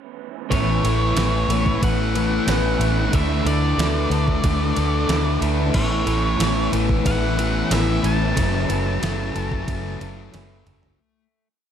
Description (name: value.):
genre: rock, shoegaze and dream pop.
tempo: 92 BPM.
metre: 4/4.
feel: straight.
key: A major.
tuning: A4 = 441 Hz.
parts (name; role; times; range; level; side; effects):
octave-fuzz lead guitar; melody; 0.5-10.3 s; C#5 to A5; -27 LUFS; right 1 dB; distortion, slapback echo.
fingerpicked twelve-string acoustic guitar; arpeggios; 0.5-11.0 s; E3 to B3; -31 LUFS; left 8 dB; wide subtle chorus, slapback echo.
electric guitar through a small old amp; riff; 0.5-11.0 s; A2 to E4; -28 LUFS; right 15 dB; reverse reverb.
sludgy distorted guitar; riff; 0.5-11.5 s; F#2 to D4; -30 LUFS; left 1 dB; overdrive.
thick fuzz guitar; riff; 0.5-11.2 s; F#2 to D4; -25 LUFS; left 10 dB; distortion, analog chorus.
vintage muted fingered electric bass; bass; 0.5-10.9 s; F#1 to D2; -23 LUFS; right 1 dB; none.
gated 80s digital drum machine; drums; 0.5-11.0 s; crash cymbal, kick drum, ride cymbal, snare drum, toms; -26 LUFS; right 1 dB; gated reverb, gated reverb snare, overdrive.
room: light reverb, digital ambience.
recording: none.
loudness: -18 LUFS.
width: side -9 dB against mid.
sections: 0.5-11.0 A section.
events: fade-out 8.4-11.0; drum fill 10.3-11.0.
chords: 0.5 Aadd9; 3.1 Dsus2; 5.7 Aadd9; 8.4 F#m7.